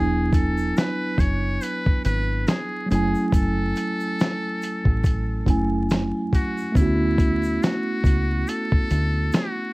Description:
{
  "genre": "lo-fi hip hop",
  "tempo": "70 BPM",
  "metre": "4/4",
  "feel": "swing 58% on 16ths",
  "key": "F# minor",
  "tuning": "A4 = 441 Hz",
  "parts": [
    { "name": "trumpet with metal mute", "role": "melody", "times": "0.0-9.7 s", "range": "E4 to C#5", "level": "-29 LUFS", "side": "equal", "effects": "low-pass filter, plate reverb" },
    { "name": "mellow tine electric piano", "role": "accompaniment", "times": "0.0-9.7 s", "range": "F#3 to G#5", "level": "-25 LUFS", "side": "right 1 dB", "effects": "medium stereo tremolo, cassette tape, low-pass filter, plate reverb" },
    { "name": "deep dub fingered electric bass", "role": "bass", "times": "0.0-9.3 s", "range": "E1 to D2", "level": "-24 LUFS", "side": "equal", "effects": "none" },
    { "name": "dusty soul sampler-style drum kit", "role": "drums", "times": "0.3-9.6 s", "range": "finger snaps, hi-hat, kick drum, snare drum", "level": "-21 LUFS", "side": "equal", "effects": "vintage 12-bit sampler grit" },
    { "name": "tube shaker", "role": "percussion", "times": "0.3-9.6 s", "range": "none", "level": "-51 LUFS", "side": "left 4 dB", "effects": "none" }
  ],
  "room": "light reverb",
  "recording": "vinyl crackle",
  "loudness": "-20 LUFS",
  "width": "side -22 dB against mid",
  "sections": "0.0-9.7 A section",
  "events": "none",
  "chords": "0.0 E9; 2.9 F#m9; 6.8 Dmaj13"
}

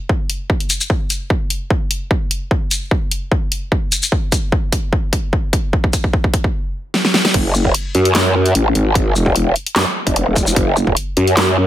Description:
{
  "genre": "heavy wobble dubstep",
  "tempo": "149 BPM",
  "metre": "4/4",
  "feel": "swing 53% on 16ths, half-time",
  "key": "F# minor",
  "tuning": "A4 = 442 Hz",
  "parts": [
    { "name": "electronic kick drum", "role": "drums", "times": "0.1-10.9 s", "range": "none", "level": "-17 LUFS", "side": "equal", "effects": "overdrive" },
    { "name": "dubstep drum kit", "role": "drums", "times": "0.3-11.5 s", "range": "crash cymbal, handclaps, hi-hat, shaker, snare drum", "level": "-17 LUFS", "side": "equal", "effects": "none" },
    { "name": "growl bass", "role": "bass", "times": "7.3-11.7 s", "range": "E1 to F#2", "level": "-14 LUFS", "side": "equal", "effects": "chorus, overdrive" }
  ],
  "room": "digital ambience",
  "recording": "none",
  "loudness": "-14 LUFS",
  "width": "side -12 dB against mid",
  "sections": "0.0-7.3 A section; 7.3-11.7 B section",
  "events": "build-up 0.0-7.3; drum fill 0.9-6.5, 6.9-7.3; drop 7.3-11.7",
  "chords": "none"
}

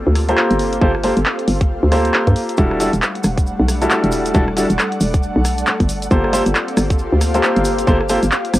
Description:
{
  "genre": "UK garage, two-step garage",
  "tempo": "136 BPM",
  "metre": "4/4",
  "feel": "swing 60% on 16ths",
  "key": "unclear",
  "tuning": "A4 = 440 Hz",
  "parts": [
    { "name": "airy breathy pad", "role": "sustained chords", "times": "0.0-8.6 s", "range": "G3 to F#5", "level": "-26 LUFS", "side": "left 1 dB", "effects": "chorus, sidechain pumping, cassette tape" },
    { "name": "hollow knocking FM bass", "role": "bass", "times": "0.0-8.6 s", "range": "E1 to G2", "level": "-17 LUFS", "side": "equal", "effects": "none" },
    { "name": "ethereal airy pad", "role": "texture", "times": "0.0-8.6 s", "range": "G4 to F#5", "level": "-26 LUFS", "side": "equal", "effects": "ensemble chorus, built-in reverb, tremolo, sidechain pumping, cassette tape" },
    { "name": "punchy analog drum machine", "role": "drums", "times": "0.2-8.6 s", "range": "handclaps, hi-hat, rim click", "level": "-21 LUFS", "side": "equal", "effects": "cassette tape" },
    { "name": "clear baby grand piano", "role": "stabs", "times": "0.3-8.2 s", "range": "G3 to C5", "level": "-18 LUFS", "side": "equal", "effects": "low-pass filter, cassette tape, analog delay" },
    { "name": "electronic kick drum", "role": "drums", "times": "0.8-8.0 s", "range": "none", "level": "-17 LUFS", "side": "equal", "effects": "cassette tape" },
    { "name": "cabasa", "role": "percussion", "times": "2.6-8.6 s", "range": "none", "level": "-30 LUFS", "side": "right 1 dB", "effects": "none" }
  ],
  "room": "little or no reverb",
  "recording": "home recording on cassette",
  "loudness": "-14 LUFS",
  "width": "side -15 dB against mid",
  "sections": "0.0-8.6 A section",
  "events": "fade-in on ambient pad 0.0-8.6",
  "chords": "0.0 Gm11; 2.6 Em11; 5.9 Gm11"
}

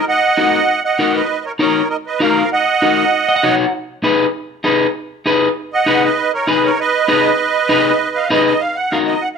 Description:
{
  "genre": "latin",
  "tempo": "196 BPM",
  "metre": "4/4",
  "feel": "straight",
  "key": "Eb minor",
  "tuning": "A4 = 439 Hz",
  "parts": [
    { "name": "musette accordion", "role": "melody", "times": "0.0-3.6, 5.7-9.4 s", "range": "Ab4 to Gb5", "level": "-15 LUFS", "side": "right 4 dB", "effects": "none" },
    { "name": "electric guitar at the edge of break-up", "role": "accompaniment", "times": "0.4-9.1 s", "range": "Eb4 to Gb5", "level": "-16 LUFS", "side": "left 4 dB", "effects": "none" }
  ],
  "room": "moderate large studio reverb, RT60 1.1 s",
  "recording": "close, detailed microphones",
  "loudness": "-13 LUFS",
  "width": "side -6 dB against mid",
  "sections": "0.0-8.6 A section",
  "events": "clean electric guitar fill 3.1-3.7",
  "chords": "0.0 Ebm; 3.7 Abm; 8.6 Ebm"
}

